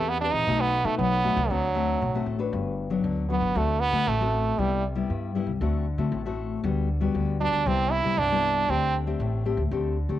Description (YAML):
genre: samba and choro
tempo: 117 BPM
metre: 4/4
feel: straight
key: G major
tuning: A4 = 440 Hz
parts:
  - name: stopped French horn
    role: melody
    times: 0.0-9.0 s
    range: F#3 to E4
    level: -25 LUFS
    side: right 4 dB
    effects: none
  - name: nylon-string guitar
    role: accompaniment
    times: 0.0-10.2 s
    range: G2 to B4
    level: -28 LUFS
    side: left 6 dB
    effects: none
  - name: upright bass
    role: bass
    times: 0.0-10.2 s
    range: G1 to D3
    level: -29 LUFS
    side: equal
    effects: none
room: light reverb, studio reverb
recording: home recording on cassette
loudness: -23 LUFS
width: side -12 dB against mid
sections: 0.0-2.5 A section; 2.5-10.2 B section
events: French horn solo 2.5-10.2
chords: 0.5 B7; 1.5 D7; 2.5 Gmaj7; 3.6 D7; 4.6 Cmaj7; 5.6 D7; 6.6 Gmaj7/D; 7.7 Cmaj7; 8.7 D7sus4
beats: | 0.48 0.99 1.50 2.02 | 2.53 3.04 3.56 4.07 | 4.58 5.10 5.61 6.12 | 6.64 7.15 7.67 8.18 | 8.69 9.21 9.72